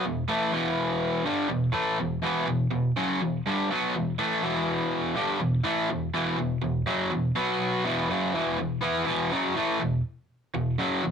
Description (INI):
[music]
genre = rock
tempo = 123 BPM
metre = 4/4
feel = straight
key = E minor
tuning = A4 = 440 Hz
[part]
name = cranked stack guitar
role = solo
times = 0.0-11.1 s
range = E2 to E4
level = -24 LUFS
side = equal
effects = overdrive
[sound]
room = moderate studio reverb, RT60 0.6 s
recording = rough rehearsal-room recording, tube saturation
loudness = -24 LUFS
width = side -7 dB against mid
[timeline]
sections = 0.0-8.3 A section; 8.3-11.1 B section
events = none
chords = 0.0 Em; 7.3 B5; 7.8 E5